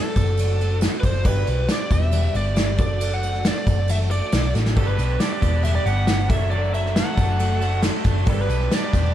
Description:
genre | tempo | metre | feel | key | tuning
folk rock and heartland rock | 137 BPM | 4/4 | straight | G major | A4 = 441 Hz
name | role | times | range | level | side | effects
biting lead guitar | melody | 0.0-9.1 s | A4 to F#5 | -27 LUFS | right 1 dB | overdrive, tape echo
picked twelve-string acoustic guitar | accompaniment | 0.0-9.1 s | G2 to A4 | -32 LUFS | left 3 dB | none
warm upright piano | accompaniment | 0.0-9.1 s | D4 to D5 | -39 LUFS | right 6 dB | none
tonewheel organ | sustained chords | 0.0-9.1 s | D4 to B4 | -37 LUFS | right 2 dB | none
hollow-body short-scale picked electric bass | bass | 0.2-9.1 s | E1 to B1 | -21 LUFS | equal | none
soft brush drum kit | drums | 0.2-9.0 s | crash cymbal, kick drum, ride cymbal, snare drum | -23 LUFS | equal | none
tambourine | percussion | 0.2-9.1 s | none | -45 LUFS | right 9 dB | none
raw garage guitar | riff | 4.8-9.1 s | G2 to A4 | -29 LUFS | right 1 dB | overdrive
room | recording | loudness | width
light reverb | dark, warm production | -18 LUFS | side -11 dB against mid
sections
0.0-9.1 A section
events
drum fill 4.5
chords
0.0 D/F#; 1.3 G; 2.8 D/F#; 4.8 G; 6.3 D/F#; 8.3 G

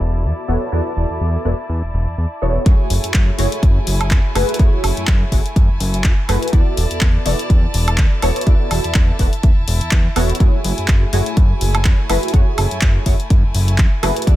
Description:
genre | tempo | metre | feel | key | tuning
filtered disco house | 124 BPM | 4/4 | swing 56% on 16ths | F# minor | A4 = 441 Hz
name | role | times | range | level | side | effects
funky polysynth comp | accompaniment | 0.0-14.4 s | A3 to D5 | -23 LUFS | equal | chorus, phaser, sidechain pumping, low-pass filter
rich chamber violin section | sustained chords | 0.0-14.4 s | A3 to A5 | -28 LUFS | left 1 dB | vintage 12-bit sampler grit, sidechain pumping, low-pass filter
fat analog bass | bass | 0.0-14.4 s | E1 to F#2 | -19 LUFS | equal | tube saturation, sidechain pumping, low-pass filter
electronic kick drum | drums | 2.7-14.4 s | none | -13 LUFS | equal | none
house drum kit | drums | 2.7-14.4 s | handclaps, hi-hat, woodblock | -23 LUFS | equal | sidechain pumping on hats, sidechain pumping on perc
room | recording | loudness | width
digital ambience | none | -14 LUFS | side -15 dB against mid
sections
0.0-2.7 A section; 2.7-14.4 B section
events
drop 2.7-14.4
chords
0.0 E7sus4; 2.7 F#m9; 6.5 E7sus4; 10.4 F#m9

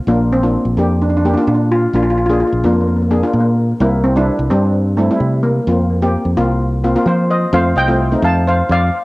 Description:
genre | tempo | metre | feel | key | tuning
calypso | 129 BPM | 4/4 | straight | Bb major | A4 = 440 Hz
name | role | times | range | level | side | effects
steel pan | melody | 0.1-9.0 s | A3 to A5 | -17 LUFS | equal | cassette tape, tape echo
steel pan | accompaniment | 0.1-8.7 s | G3 to Ab4 | -18 LUFS | left 1 dB | cassette tape
fingered electric bass | bass | 0.1-8.9 s | Bb1 to F3 | -16 LUFS | equal | none
room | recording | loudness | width
light reverb, small room ambience | home recording on cassette | -12 LUFS | side -21 dB against mid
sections
0.0-7.5 A section; 7.5-9.0 B section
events
none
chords
0.1 Bb; 1.9 Bb7; 3.8 C; 5.7 Fsus4; 7.5 Cm

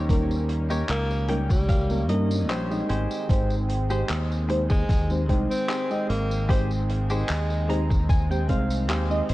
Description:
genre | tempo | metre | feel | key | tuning
vaporwave | 75 BPM | 4/4 | straight | Ab major | A4 = 437 Hz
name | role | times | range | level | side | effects
mellow FM electric piano | accompaniment | 0.0-9.3 s | G3 to G5 | -28 LUFS | right 1 dB | lush chorus, tape echo
lush unison pad | sustained chords | 0.0-9.3 s | Eb3 to Db4 | -36 LUFS | right 1 dB | chorus
direct-recorded clean electric guitar | riff | 0.0-9.3 s | Eb4 to Bb5 | -34 LUFS | left 1 dB | wide subtle chorus, tape echo
modern bright fingered electric bass | bass | 0.0-9.3 s | Ab1 to G2 | -26 LUFS | equal | none
electronic kick drum | drums | 0.1-8.7 s | none | -23 LUFS | equal | vintage 12-bit sampler grit
loose indie drum kit | drums | 0.1-9.3 s | handclaps, hi-hat, tambourine | -36 LUFS | equal | vintage 12-bit sampler grit
clear tenor saxophone | melody | 0.9-7.9 s | G3 to C4 | -33 LUFS | equal | tape echo
room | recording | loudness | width
light reverb, small room ambience | worn, warbling old tape, cassette tape, warbly pitch drift | -22 LUFS | side -17 dB against mid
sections
0.0-9.3 A section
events
clean electric guitar fill 0.9-3.3, 7.3-9.3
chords
0.0 Eb7; 2.9 Abmaj7

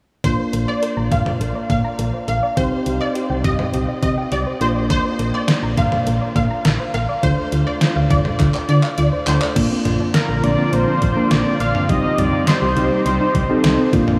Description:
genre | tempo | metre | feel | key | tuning
synth-pop | 103 BPM | 4/4 | straight | Bb major | A4 = 436 Hz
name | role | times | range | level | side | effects
unison pluck | second line | 0.2-9.4 s | C5 to F5 | -27 LUFS | equal | ensemble chorus, diffuse ambient delay
soft electric-piano-like synth keys | accompaniment | 0.2-14.2 s | A3 to A4 | -25 LUFS | equal | chorus
soft round pluck | arpeggios | 0.2-14.2 s | G3 to Bb5 | -30 LUFS | equal | chorus, diffuse ambient delay
solid FM bass | bass | 0.2-14.2 s | Bb1 to D3 | -22 LUFS | equal | none
detuned 8-bit digital drum machine | drums | 0.2-14.2 s | crash cymbal, handclaps, hi-hat, kick drum, snare drum, toms | -24 LUFS | equal | overdrive
string machine, full ensemble | sustained chords | 9.6-14.2 s | D3 to F4 | -26 LUFS | equal | ensemble chorus
octave-doubled lead | melody | 10.1-13.9 s | Bb4 to F5 | -23 LUFS | equal | chorus, diffuse ambient delay
room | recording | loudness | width
wet huge ambient reverb, RT60 7.7 s | dreamy mix soaked in reverb, studio reverb | -18 LUFS | mono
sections
0.2-9.6 A section; 9.6-14.2 B section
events
drum fill 8.4-9.6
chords
0.2 Bbadd9; 2.6 Cm; 4.6 Bbadd9; 7.2 Dm7; 9.6 Bbadd9; 11.9 Cm

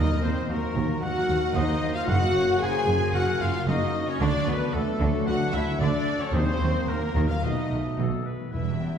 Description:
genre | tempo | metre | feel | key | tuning
cinematic, heroic adventure film score | 112 BPM | 4/4 | straight | Eb dorian | A4 = 438 Hz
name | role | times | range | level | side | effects
clear symphonic violin section | melody | 0.0-9.0 s | A4 to Ab5 | -36 LUFS | left 4 dB | none
silver concert flute | second line | 0.0-9.0 s | A4 to Ab5 | -38 LUFS | left 1 dB | none
warm clarinet | second line | 0.0-9.0 s | E4 to Db5 | -38 LUFS | left 2 dB | none
warm oboe | second line | 0.0-8.0 s | A4 to Ab5 | -38 LUFS | equal | none
warm symphonic violin section | second line | 0.0-9.0 s | A4 to Ab5 | -38 LUFS | left 3 dB | none
warm studio viola section | accompaniment | 0.0-9.0 s | G3 to B4 | -33 LUFS | equal | none
bright trombone section | sustained chords | 0.0-9.0 s | E3 to D4 | -37 LUFS | right 1 dB | none
mellow French horn section | sustained chords | 0.0-9.0 s | E3 to Ab4 | -31 LUFS | left 2 dB | none
concert harp | arpeggios | 0.0-9.0 s | Gb2 to Bb5 | -37 LUFS | left 4 dB | none
clear trumpet section | stabs | 0.0-9.0 s | E4 to Ab5 | -34 LUFS | right 2 dB | none
dark tuba | bass | 0.0-8.1 s | Gb1 to Eb2 | -32 LUFS | right 2 dB | none
rich symphonic cello section | bass | 0.0-9.0 s | Eb2 to Eb3 | -31 LUFS | right 1 dB | none
warm studio double bass section | bass | 0.0-9.0 s | E1 to Eb2 | -29 LUFS | right 1 dB | none
timpani | percussion | 0.0-0.7, 6.3-9.0 s | E2 to Eb3 | -35 LUFS | right 1 dB | none
room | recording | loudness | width
wet scoring stage reverb, RT60 1.7 s | heard from further back in the room | -22 LUFS | side -8 dB against mid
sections
0.0-8.5 A section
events
none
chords
0.0 Ebm; 2.1 Gb; 4.2 D; 6.3 Ebm; 7.4 B7

